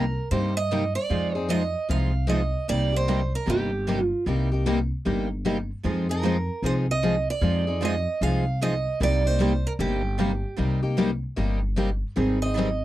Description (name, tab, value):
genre	acoustic string swing (jazz manouche)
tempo	152 BPM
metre	4/4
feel	swing 63% on 8ths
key	C minor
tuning	A4 = 440 Hz
part	picked steel-string acoustic guitar	melody	0.0-12.8 s	G4 to F5	-28 LUFS	right 4 dB	none
part	picked steel-string acoustic guitar	accompaniment	0.0-12.7 s	C3 to Ab4	-27 LUFS	left 4 dB	none
part	picked steel-string acoustic guitar	accompaniment	0.0-12.7 s	C3 to C5	-31 LUFS	right 7 dB	none
part	upright bass	bass	0.0-12.8 s	G1 to G2	-26 LUFS	equal	none
room	light reverb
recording	dry, close 1970s-style studio recording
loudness	-22 LUFS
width	side -14 dB against mid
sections	0.0-12.8 A section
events	none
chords	0.0 Cm7; 1.1 Fm7; 2.7 Cm7; 5.8 Fm7; 9.0 Cm7; 12.2 Abmaj7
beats	0.32 0.71 | 1.11 1.50 1.90 2.29 | 2.69 3.08 3.48 3.87 | 4.27 4.66 5.06 5.45 | 5.85 6.24 6.64 7.03 | 7.43 7.82 8.22 8.61 | 9.01 9.40 9.80 10.19 | 10.59 10.98 11.38 11.78 | 12.17 12.56